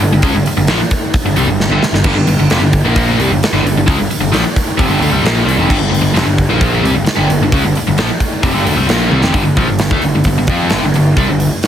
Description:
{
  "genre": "hard rock",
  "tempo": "132 BPM",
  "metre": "4/4",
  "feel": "straight",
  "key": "unclear",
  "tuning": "A4 = 439 Hz",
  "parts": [
    { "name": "biting overdriven guitar", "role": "riff", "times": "0.0-11.5 s", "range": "F2 to F4", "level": "-14 LUFS", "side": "equal", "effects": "none" },
    { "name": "fuzz picked electric bass", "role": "bass", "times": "0.0-11.5 s", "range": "F1 to F2", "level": "-16 LUFS", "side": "equal", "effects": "overdrive" },
    { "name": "huge arena drum kit", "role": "drums", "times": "0.0-11.7 s", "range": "crash cymbal, hi-hat, kick drum, snare drum, toms", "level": "-16 LUFS", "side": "equal", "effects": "none" }
  ],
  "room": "little or no reverb",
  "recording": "heavily compressed radio sound",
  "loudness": "-10 LUFS",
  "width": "side -10 dB against mid",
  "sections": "0.0-9.3 A section; 9.3-11.7 B section",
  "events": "drum fill 1.6-2.1, 9.1",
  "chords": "0.0 G5"
}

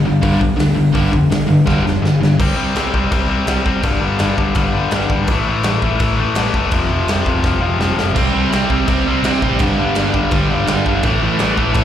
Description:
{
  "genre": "punk rock",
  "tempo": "167 BPM",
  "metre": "4/4",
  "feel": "straight",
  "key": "C major",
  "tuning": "A4 = 442 Hz",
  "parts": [
    { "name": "distorted electric guitar", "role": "riff", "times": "0.0-11.8 s", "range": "F2 to C4", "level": "-17 LUFS", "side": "left 4 dB", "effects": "overdrive, slapback echo" },
    { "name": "sludgy distorted guitar", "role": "riff", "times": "0.0-2.4, 8.1-11.8 s", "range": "G2 to C4", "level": "-18 LUFS", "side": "right 8 dB", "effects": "overdrive" },
    { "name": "picked electric bass", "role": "bass", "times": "0.0-11.8 s", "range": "E1 to G2", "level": "-21 LUFS", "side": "equal", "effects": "none" },
    { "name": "big rock drum kit", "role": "drums", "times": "0.2-11.8 s", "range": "crash cymbal, hi-hat, kick drum, snare drum, splash cymbal", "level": "-20 LUFS", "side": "equal", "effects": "none" }
  ],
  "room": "small room ambience",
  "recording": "live gig heard through the venue's PA, club reverb",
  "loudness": "-13 LUFS",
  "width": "side -10 dB against mid",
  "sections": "0.0-2.4 A section; 2.4-11.8 B section",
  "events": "drum fill 1.7-2.4, 7.4-8.2",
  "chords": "0.0 G5; 2.4 C5; 3.8 G5; 5.3 A5; 6.7 F5; 8.2 C5; 9.6 G5; 11.0 A5"
}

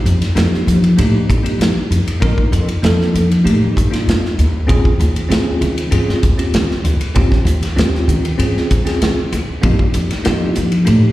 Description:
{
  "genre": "electric jazz fusion",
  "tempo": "97 BPM",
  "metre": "4/4",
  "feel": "straight",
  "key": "unclear",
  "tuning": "A4 = 440 Hz",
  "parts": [
    { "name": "bell-like tine electric piano", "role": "accompaniment", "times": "0.0-11.1 s", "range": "Bb3 to Bb4", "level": "-20 LUFS", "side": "equal", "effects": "fast stereo tremolo, slapback echo" },
    { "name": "upright bass", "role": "bass", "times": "0.1-11.1 s", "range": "Eb2 to F3", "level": "-15 LUFS", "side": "equal", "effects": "none" },
    { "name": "modern studio drum kit", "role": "drums", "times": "0.1-11.0 s", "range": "hi-hat, kick drum, ride cymbal, snare drum", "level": "-18 LUFS", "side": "equal", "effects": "none" }
  ],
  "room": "light reverb",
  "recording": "live gig heard through the venue's PA, recital hall reverb",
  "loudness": "-13 LUFS",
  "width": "side -16 dB against mid",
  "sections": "0.0-11.1 A section",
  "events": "none",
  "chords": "0.0 F13sus4; 4.7 Eb13sus4; 9.6 F13sus4"
}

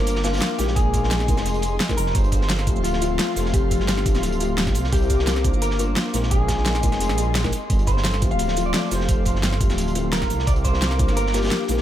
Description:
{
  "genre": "liquid drum and bass",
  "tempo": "173 BPM",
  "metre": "4/4",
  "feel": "straight",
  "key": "unclear",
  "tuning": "A4 = 440 Hz",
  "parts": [
    { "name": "electric guitar at the edge of break-up", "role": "melody", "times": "0.0-11.8 s", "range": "F4 to F5", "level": "-28 LUFS", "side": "left 2 dB", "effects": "vintage 12-bit sampler grit, tape echo" },
    { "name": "felt-muted upright piano", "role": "accompaniment", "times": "0.0-11.8 s", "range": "F3 to C5", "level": "-28 LUFS", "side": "left 3 dB", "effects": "vintage 12-bit sampler grit" },
    { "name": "airy breathy pad", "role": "sustained chords", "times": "0.0-11.8 s", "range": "Ab4 to D6", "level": "-31 LUFS", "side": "left 1 dB", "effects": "chorus, sidechain pumping" },
    { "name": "dark detuned saw bass", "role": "bass", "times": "0.0-11.8 s", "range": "D1 to C2", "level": "-23 LUFS", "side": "right 1 dB", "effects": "tube saturation" },
    { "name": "crunchy breakbeat drum kit", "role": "drums", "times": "0.1-11.8 s", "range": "hi-hat, snare drum", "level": "-32 LUFS", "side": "right 1 dB", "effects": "high-pass filter on hats, high-pass filter on snare, high-pass filter on room" },
    { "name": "pop drum kit", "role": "drums", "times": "0.1-11.8 s", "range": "hi-hat, shaker, snare drum", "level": "-26 LUFS", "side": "right 1 dB", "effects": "none" },
    { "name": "electronic kick drum", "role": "drums", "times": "0.8-11.1 s", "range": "none", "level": "-22 LUFS", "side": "right 1 dB", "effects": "none" },
    { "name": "swell", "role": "sound effects", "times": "7.2-7.7 s", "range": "none", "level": "-34 LUFS", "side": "right 2 dB", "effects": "none" }
  ],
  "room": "small room ambience",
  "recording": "none",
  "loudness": "-18 LUFS",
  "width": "side -12 dB against mid",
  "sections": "0.0-11.8 A section",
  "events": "swell 7.2-7.7",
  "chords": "0.0 C9sus4; 0.8 Bb9sus4; 2.2 G9sus4; 4.8 C9sus4; 6.3 Bb9sus4; 7.7 G9sus4; 10.3 C9sus4"
}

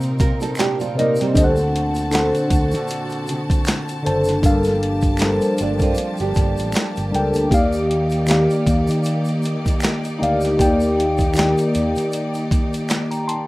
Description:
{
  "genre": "R&B, neo-soul",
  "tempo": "78 BPM",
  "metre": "4/4",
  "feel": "swing 56% on 16ths",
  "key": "unclear",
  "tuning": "A4 = 441 Hz",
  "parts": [
    { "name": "mellow tine electric piano", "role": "accompaniment", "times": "0.0-13.5 s", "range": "C3 to C6", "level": "-19 LUFS", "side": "left 1 dB", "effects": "phaser" },
    { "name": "rich studio string section", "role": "sustained chords", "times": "0.0-13.5 s", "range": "Bb2 to A5", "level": "-29 LUFS", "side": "equal", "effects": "none" },
    { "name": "fingered electric bass", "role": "bass", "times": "0.0-12.6 s", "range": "F#1 to Eb3", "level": "-24 LUFS", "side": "equal", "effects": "none" },
    { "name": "boom bap sampler-style drum kit", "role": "drums", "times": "0.0-13.5 s", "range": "handclaps, hi-hat, kick drum, snare drum", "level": "-20 LUFS", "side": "equal", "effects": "none" },
    { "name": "tube shaker and finger snaps", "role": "percussion", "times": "0.0-13.3 s", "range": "none", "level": "-36 LUFS", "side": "right 1 dB", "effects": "none" },
    { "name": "nylon-string guitar", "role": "second line", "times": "0.2-7.3 s", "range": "G3 to Bb4", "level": "-24 LUFS", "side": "right 5 dB", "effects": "none" }
  ],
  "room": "little or no reverb",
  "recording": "rough home demo mix",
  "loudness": "-16 LUFS",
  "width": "side -19 dB against mid",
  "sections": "0.0-13.5 A section",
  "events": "none",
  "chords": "0.0 Cm9; 1.4 D7; 4.4 Gm9; 7.5 Ebmaj7"
}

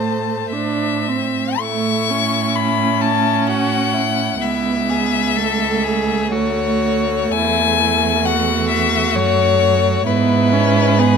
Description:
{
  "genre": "classical, slow romantic movement for string quartet",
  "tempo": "64 BPM",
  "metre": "3/4",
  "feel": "uneven beats, rubato",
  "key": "A major",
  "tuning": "A4 = 444 Hz",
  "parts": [
    { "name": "rich violin", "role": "melody", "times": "0.0-11.2 s", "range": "B4 to C#6", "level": "-19 LUFS", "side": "left 11 dB", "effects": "none" },
    { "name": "rich violin", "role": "second line", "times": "0.0-11.2 s", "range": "E4 to C5", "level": "-24 LUFS", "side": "left 2 dB", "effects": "none" },
    { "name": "rich viola", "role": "accompaniment", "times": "0.0-11.2 s", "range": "A3 to D4", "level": "-21 LUFS", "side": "right 4 dB", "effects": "none" },
    { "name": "rich cello", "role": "bass", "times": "0.0-11.2 s", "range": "C#2 to A2", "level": "-21 LUFS", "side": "right 6 dB", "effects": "none" }
  ],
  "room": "moderate recital hall reverb, RT60 1.3 s",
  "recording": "close, detailed microphones",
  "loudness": "-15 LUFS",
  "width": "side -6 dB against mid",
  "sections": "0.0-1.6 A section; 1.6-11.2 B section",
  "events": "none",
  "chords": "0.0 Am; 1.6 A; 4.4 A/C#; 7.3 E; 10.1 E/G#"
}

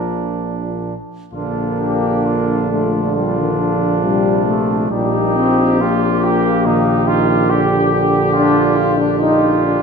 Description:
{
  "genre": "classical, hymn-like piece for brass band",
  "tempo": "59-72 BPM",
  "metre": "4/4",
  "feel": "rubato",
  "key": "Bb major",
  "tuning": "A4 = 439 Hz",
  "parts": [
    { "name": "dark trumpet section", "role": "melody", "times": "0.0-9.8 s", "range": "F4 to Bb4", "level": "-22 LUFS", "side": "left 6 dB", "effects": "none" },
    { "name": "warm flugelhorn", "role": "second line", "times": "0.0-9.8 s", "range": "D4 to G4", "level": "-21 LUFS", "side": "right 7 dB", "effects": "none" },
    { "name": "clear euphonium", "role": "accompaniment", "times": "0.0-9.8 s", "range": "Bb2 to Eb3", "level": "-22 LUFS", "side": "right 3 dB", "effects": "none" },
    { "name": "warm trombone section", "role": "accompaniment", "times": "0.0-9.8 s", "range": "Eb3 to F4", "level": "-18 LUFS", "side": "left 2 dB", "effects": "none" },
    { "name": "mellow tuba", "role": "bass", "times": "0.0-9.8 s", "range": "Bb1", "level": "-20 LUFS", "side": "equal", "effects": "none" }
  ],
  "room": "moderate scoring stage reverb, RT60 1.8 s",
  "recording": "none",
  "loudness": "-13 LUFS",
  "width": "side -5 dB against mid",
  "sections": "0.0-1.3 A section; 1.3-9.8 A section",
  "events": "none",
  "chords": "0.0 Bb; 4.9 Eb/Bb; 8.3 Bb"
}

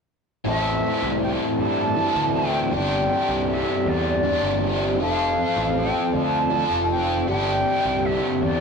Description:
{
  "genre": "rock",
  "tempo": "53 BPM (dotted quarters)",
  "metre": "6/8",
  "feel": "straight",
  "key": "A minor",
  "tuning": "A4 = 436 Hz",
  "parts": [
    { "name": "biting overdriven guitar", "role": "riff", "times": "0.4-8.6 s", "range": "G2 to A4", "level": "-22 LUFS", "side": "left 1 dB", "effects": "harmonic tremolo" },
    { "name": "silver concert flute", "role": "melody", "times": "0.5-8.6 s", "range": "D5 to A5", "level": "-26 LUFS", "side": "right 1 dB", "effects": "none" },
    { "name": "fuzz picked electric bass", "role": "bass", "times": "0.5-8.6 s", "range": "F1 to G2", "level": "-28 LUFS", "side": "equal", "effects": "overdrive" }
  ],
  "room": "moderate booth ambience, RT60 0.2 s",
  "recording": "rough rehearsal-room recording, warm saturation",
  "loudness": "-20 LUFS",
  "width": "side -5 dB against mid",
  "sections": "0.5-8.6 A section",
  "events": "none",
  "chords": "0.5 Am; 2.7 Gsus4; 5.0 F; 7.3 Gsus4"
}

